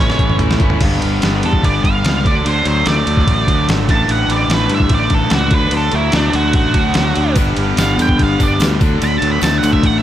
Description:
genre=classic rock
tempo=146 BPM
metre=4/4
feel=straight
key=D major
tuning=A4 = 443 Hz
part: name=octave-fuzz lead guitar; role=melody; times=0.0-10.0 s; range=D4 to B5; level=-19 LUFS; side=right 3 dB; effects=distortion
part: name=distorted electric guitar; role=riff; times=0.0-10.0 s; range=G2 to E4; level=-20 LUFS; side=left 7 dB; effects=distortion
part: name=overdriven electric guitar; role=riff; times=0.0-10.0 s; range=G2 to E4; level=-22 LUFS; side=right 8 dB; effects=none
part: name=fingered electric bass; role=bass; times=0.0-10.0 s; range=G1 to G2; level=-18 LUFS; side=equal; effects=none
part: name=trip hop sampler-style drum kit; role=drums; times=0.1-9.9 s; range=crash cymbal, hi-hat, kick drum, ride cymbal, snare drum, toms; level=-17 LUFS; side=equal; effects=none
part: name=string machine, cellos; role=sustained chords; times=7.4-10.0 s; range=A3 to B4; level=-23 LUFS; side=left 1 dB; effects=none
part: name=tambourine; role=percussion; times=7.4-9.7 s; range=none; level=-32 LUFS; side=left 5 dB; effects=none
room=little or no reverb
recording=none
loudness=-12 LUFS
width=side -12 dB against mid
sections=0.8-10.0 A section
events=drum fill 0.0-0.8; lead electric guitar solo 0.8-10.0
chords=0.0 A; 0.8 G; 2.2 D; 3.9 Asus4; 5.5 D; 7.4 G; 8.8 D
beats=0.40 | 0.81 1.22 1.63 2.04 | 2.45 2.86 3.27 3.68 | 4.09 4.50 4.91 5.32 | 5.73 6.14 6.55 6.96 | 7.37 7.78 8.19 8.60 | 9.01 9.42 9.83

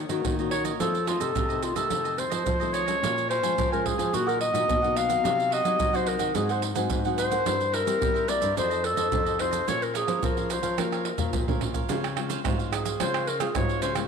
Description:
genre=samba and choro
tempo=108 BPM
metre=4/4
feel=straight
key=Bb minor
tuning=A4 = 439 Hz
part: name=nylon-string guitar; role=accompaniment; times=0.0-14.1 s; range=F2 to C5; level=-34 LUFS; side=left 11 dB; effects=none
part: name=nylon-string guitar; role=bass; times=0.0-14.1 s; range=F2 to G3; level=-32 LUFS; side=left 1 dB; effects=none
part: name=cavaquinho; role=accompaniment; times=0.1-14.1 s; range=E4 to Ab5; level=-34 LUFS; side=right 9 dB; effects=none
part: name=maracas, pandeiro, surdo and tamborim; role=percussion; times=0.1-14.1 s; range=none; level=-30 LUFS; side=right 4 dB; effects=none
part: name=mellow clarinet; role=melody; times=0.5-13.9 s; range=F4 to F5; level=-26 LUFS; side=left 1 dB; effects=none
room=moderate echo chamber reverb, RT60 2.2 s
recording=1960s-style stereo with parts hard left and right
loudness=-23 LUFS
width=side -6 dB against mid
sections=0.0-11.9 A section; 11.9-14.1 B section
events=drum fill 10.8-11.9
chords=0.0 Ebm7; 0.8 F7; 3.0 Bbm7; 4.1 Ebmadd9/Bb; 5.2 Cdim; 6.4 Ab7; 7.5 C7/G; 8.6 F7; 9.7 Bbmadd9; 11.9 Dbmaj7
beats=0.25 | 0.80 1.36 1.92 2.47 | 3.02 3.58 4.14 4.69 | 5.25 5.80 6.36 6.91 | 7.46 8.02 8.57 9.13 | 9.68 10.23 10.79 11.34 | 11.89 12.45 13.00 13.55

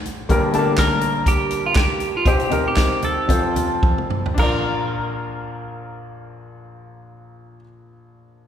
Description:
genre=piano-driven pop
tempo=106-125 BPM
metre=4/4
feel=swing 56% on 16ths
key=Bb major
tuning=A4 = 439 Hz
part: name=clear baby grand piano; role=accompaniment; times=0.0-8.5 s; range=F1 to A5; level=-23 LUFS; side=left 2 dB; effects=none
part: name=natural country drum kit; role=drums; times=0.1-4.5 s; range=crash cymbal, handclaps, hi-hat, kick drum, snare drum, toms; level=-21 LUFS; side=equal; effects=none
part: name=twelve-string electric guitar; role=melody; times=0.8-7.6 s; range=F4 to Bb4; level=-23 LUFS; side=right 2 dB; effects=none
room=wet concert hall reverb, RT60 2.0 s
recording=recorded in a church or concert hall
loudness=-17 LUFS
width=side -9 dB against mid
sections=0.0-4.4 A section; 4.4-8.5 B section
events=slowing down 0.3-4.4; drum fill 3.8-4.4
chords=0.3 Gm; 2.3 Cm; 3.3 F; 4.4 Bb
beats=| 0.29 0.78 1.26 1.75 | 2.25 2.76 3.29 3.83 | 4.38 4.95 5.51 6.08 | 6.64 7.21 7.77 8.34

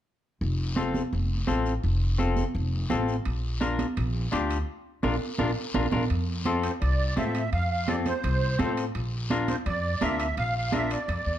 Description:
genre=latin, cumbia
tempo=169 BPM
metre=4/4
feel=straight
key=F major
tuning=A4 = 440 Hz
part: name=upright bass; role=bass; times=0.4-11.4 s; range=F1 to A2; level=-28 LUFS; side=equal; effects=none
part: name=guiro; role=percussion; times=0.4-11.4 s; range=none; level=-42 LUFS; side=left 5 dB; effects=none
part: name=semi-hollow electric guitar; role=accompaniment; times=0.8-11.0 s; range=C4 to Bb4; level=-30 LUFS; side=left 5 dB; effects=none
part: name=congas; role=percussion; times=0.8-10.9 s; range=none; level=-32 LUFS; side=right 4 dB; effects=none
part: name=timbales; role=percussion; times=3.3-11.3 s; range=none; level=-39 LUFS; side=right 6 dB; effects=none
part: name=musette accordion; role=melody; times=6.6-11.4 s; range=C5 to F5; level=-30 LUFS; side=right 3 dB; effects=none
room=light reverb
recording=dark, warm production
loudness=-25 LUFS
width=side -11 dB against mid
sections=0.4-6.1 A section; 6.1-11.4 B section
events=drum fill 4.7-6.1; band accent 4.7-6.1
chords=0.4 F; 3.3 Bb; 6.1 F; 8.9 Bb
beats=| 0.41 0.77 1.12 1.48 | 1.83 2.19 2.55 2.90 | 3.26 3.61 3.97 4.32 | 4.68 5.04 5.39 5.75 | 6.10 6.46 6.81 7.17 | 7.53 7.88 8.24 8.59 | 8.95 9.30 9.66 10.02 | 10.37 10.73 11.08

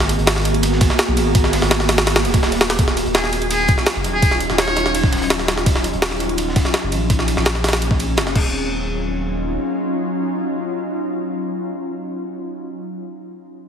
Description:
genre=drum and bass, jungle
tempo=167 BPM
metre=4/4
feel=straight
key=Eb minor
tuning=A4 = 435 Hz
part: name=ethereal airy pad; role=sustained chords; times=0.0-12.2 s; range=Gb3 to Ab4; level=-22 LUFS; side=equal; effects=ensemble chorus, built-in reverb, vintage 12-bit sampler grit
part: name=soft dub sub bass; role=bass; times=0.0-9.6 s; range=Eb1 to Cb2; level=-23 LUFS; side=equal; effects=tube saturation
part: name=jungle sampler-style drum kit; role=drums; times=0.0-8.4 s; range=crash cymbal, kick drum, ride cymbal, snare drum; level=-18 LUFS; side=equal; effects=none
part: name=crunchy breakbeat drum kit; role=drums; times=0.1-8.3 s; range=hi-hat, snare drum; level=-30 LUFS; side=right 1 dB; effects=none
part: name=trumpet with metal mute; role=melody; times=3.2-4.9 s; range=Ab4 to Db5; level=-22 LUFS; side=left 1 dB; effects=dub echo
room=moderate lush hall reverb, RT60 1.7 s, studio reverb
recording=heavily compressed radio sound, multiband compression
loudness=-16 LUFS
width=side -8 dB against mid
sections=0.0-2.8 A section; 2.8-8.5 B section; 8.5-11.4 C section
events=drop 0.0-2.8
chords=0.0 Abm9; 2.8 Ebm9; 7.1 Bbm9; 8.4 Ebm9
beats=0.27 0.63 0.99 | 1.35 1.71 2.07 2.43 | 2.79 3.15 3.51 3.87 | 4.22 4.58 4.94 5.30 | 5.66 6.02 6.38 6.74 | 7.10 7.46 7.82 8.18 | 8.54 8.89 9.26 9.61 | 9.97 10.33 10.69 11.05

